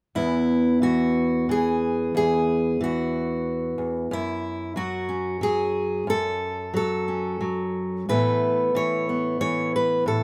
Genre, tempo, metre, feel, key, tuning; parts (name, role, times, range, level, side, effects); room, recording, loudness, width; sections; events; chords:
folk, solo fingerstyle acoustic guitar; 91 BPM; 3/4; rubato; E major; A4 = 440 Hz
fingerpicked steel-string acoustic guitar; solo; 0.2-10.2 s; E2 to C#5; -24 LUFS; equal
light reverb; -24 LUFS; mono
0.2-10.2 A section
0.2 Eadd9; 4.1 F#m; 8.1 Aadd9